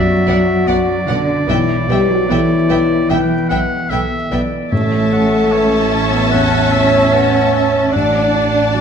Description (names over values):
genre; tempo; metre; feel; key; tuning
cinematic, emotional film score for orchestra; 74 BPM; 4/4; rubato; unclear; A4 = 438 Hz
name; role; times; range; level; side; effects
clear oboe; second line; 0.0-8.8 s; C#5 to A5; -22 LUFS; right 2 dB; none
warm clarinet; second line; 0.0-8.8 s; B4 to F#5; -26 LUFS; right 1 dB; none
felt-muted upright piano; accompaniment; 0.0-8.8 s; A1 to D5; -21 LUFS; left 1 dB; none
mellow French horn section; sustained chords; 0.0-8.8 s; D4 to D5; -17 LUFS; left 3 dB; none
warm symphonic cello section; bass; 0.0-8.8 s; D3 to D4; -19 LUFS; right 2 dB; none
warm symphonic violin section; melody; 0.3-8.8 s; F#5 to A5; -24 LUFS; left 2 dB; none
warm symphonic violin section; second line; 0.3-8.8 s; D5 to E5; -25 LUFS; left 1 dB; none
clear symphonic viola section; accompaniment; 0.3-8.8 s; B3 to D4; -24 LUFS; right 2 dB; none
rich symphonic double bass section; bass; 0.3-8.8 s; A1 to B1; -22 LUFS; right 4 dB; none
timpani; percussion; 4.7-5.9 s; A2; -25 LUFS; equal; none
room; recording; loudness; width
wet scoring stage reverb, RT60 1.9 s; none; -12 LUFS; side -7 dB against mid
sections
0.0-8.8 A section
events
none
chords
0.0 Bm; 1.5 Em/B; 4.7 A; 7.9 D/A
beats
0.67 | 1.48 2.29 3.09 3.90 | 4.72 5.52 6.32 7.13 | 7.93 8.74